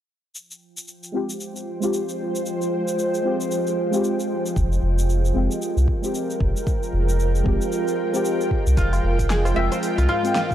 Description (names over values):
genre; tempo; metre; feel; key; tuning
organic downtempo; 114 BPM; 4/4; swing 59% on 16ths; F minor; A4 = 440 Hz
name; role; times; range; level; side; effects
bowed-like drone; sustained chords; 1.1-10.5 s; F3 to G5; -25 LUFS; right 1 dB; built-in reverb, sidechain pumping
deep house drum kit; drums; 0.4-10.5 s; cabasa, hi-hat, snare drum; -33 LUFS; equal; none
deep mellow chord stab; accompaniment; 1.1-10.5 s; Ab3 to G5; -27 LUFS; left 2 dB; chorus, vintage 12-bit sampler grit, sidechain pumping, tape echo
warm sub bass; bass; 4.6-10.1 s; F1 to C2; -20 LUFS; equal; tube saturation
electronic kick drum; drums; 4.6-10.5 s; none; -24 LUFS; equal; none
oud; arpeggios; 8.8-10.5 s; F4 to E5; -25 LUFS; left 1 dB; tape echo
tabla; percussion; 8.9-10.5 s; none; -32 LUFS; left 1 dB; none
room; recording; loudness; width
light reverb; dry, gritty hardware recording; -20 LUFS; side -11 dB against mid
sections
0.4-8.8 A section; 8.8-10.5 B section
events
filter sweep on synth drone 0.4-8.8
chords
0.4 Fmadd9